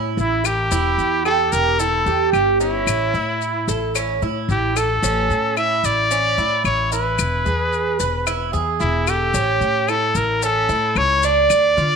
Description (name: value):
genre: latin, Cuban son and guajira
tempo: 111 BPM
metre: 4/4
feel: straight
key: unclear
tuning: A4 = 439 Hz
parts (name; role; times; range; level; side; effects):
- Cuban tres; arpeggios; 0.0-12.0 s; C#4 to B4; -22 LUFS; right 6 dB; none
- upright bass; bass; 0.0-12.0 s; E1 to D3; -24 LUFS; left 2 dB; none
- brilliant trumpet; melody; 0.2-12.0 s; E4 to E5; -20 LUFS; left 2 dB; none
- maracas; percussion; 0.2-12.0 s; none; -29 LUFS; left 17 dB; none
- claves; percussion; 0.4-11.8 s; none; -27 LUFS; left 14 dB; none
room: moderate echo chamber reverb, RT60 1.2 s, small room ambience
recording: 1960s-style stereo with parts hard left and right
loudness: -16 LUFS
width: side -5 dB against mid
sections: 0.0-12.0 A section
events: none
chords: 0.0 A5; 0.7 Emadd11; 2.9 A; 7.2 E; 9.3 A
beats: 0.17 | 0.71 1.25 1.79 2.33 | 2.87 3.41 3.95 4.49 | 5.03 5.57 6.11 6.65 | 7.19 7.73 8.27 8.81 | 9.35 9.88 10.42 10.96 | 11.50